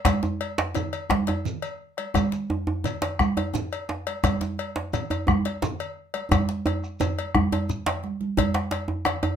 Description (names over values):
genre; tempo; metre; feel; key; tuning
west african traditional, West African drum ensemble; 116 BPM (dotted quarters); 12/8; straight; none; none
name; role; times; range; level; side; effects
bombo; percussion; 0.0-9.2 s; none; -25 LUFS; left 2 dB; none
congas; percussion; 0.1-9.2 s; none; -29 LUFS; right 5 dB; none
cowbell; percussion; 0.1-9.4 s; none; -31 LUFS; left 6 dB; none
djembe; percussion; 0.1-9.3 s; none; -31 LUFS; left 6 dB; none
djembe; percussion; 0.1-9.4 s; none; -27 LUFS; right 2 dB; none
shekere; percussion; 0.1-8.0 s; none; -34 LUFS; right 1 dB; none
room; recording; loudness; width
moderate studio reverb, RT60 0.5 s; none; -24 LUFS; side -8 dB against mid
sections
0.1-8.4 A section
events
drum fill 6.3-8.4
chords
none